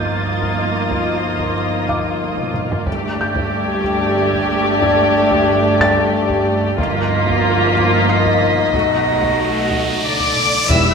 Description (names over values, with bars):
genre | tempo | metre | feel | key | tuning
cinematic, suspense film score | 92 BPM | 3/4 | straight | unclear | A4 = 440 Hz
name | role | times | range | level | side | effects
muted studio violin section | melody | 0.0-10.9 s | D5 to E6 | -24 LUFS | left 2 dB | none
muted studio violin section | second line | 0.0-10.9 s | F4 to E5 | -21 LUFS | left 1 dB | none
muted studio viola section | accompaniment | 0.0-10.9 s | A3 to E4 | -23 LUFS | right 2 dB | none
mellow French horn section | sustained chords | 0.0-10.9 s | F3 to E4 | -20 LUFS | left 2 dB | none
muted studio cello section | bass | 0.0-10.9 s | G2 to E3 | -26 LUFS | right 2 dB | none
muted studio double bass section | bass | 0.0-10.9 s | G1 to E2 | -25 LUFS | right 3 dB | none
felt-muted upright piano | texture | 0.0-10.7 s | Eb5 to C7 | -26 LUFS | equal | none
muted studio violin section | texture | 0.0-10.3 s | D6 to B6 | -26 LUFS | equal | none
taiko ensemble | drums | 0.4-10.9 s | none | -28 LUFS | equal | none
timpani | percussion | 2.9-3.8, 6.8-7.7, 10.7-10.9 s | E2 to G2 | -24 LUFS | equal | none
riser and impact | sound effects | 8.5-10.9 s | none | -23 LUFS | right 1 dB | none
room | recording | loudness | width
moderate scoring stage reverb, RT60 1.6 s | minimal, uncompressed stereo recording | -14 LUFS | side -5 dB against mid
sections
0.0-10.7 A section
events
drum fill 2.4-2.9; riser 8.5-10.7; impact 10.7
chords
0.0 Ebadd9/G; 2.9 Gsus2; 6.8 Ebadd9/G; 8.7 B7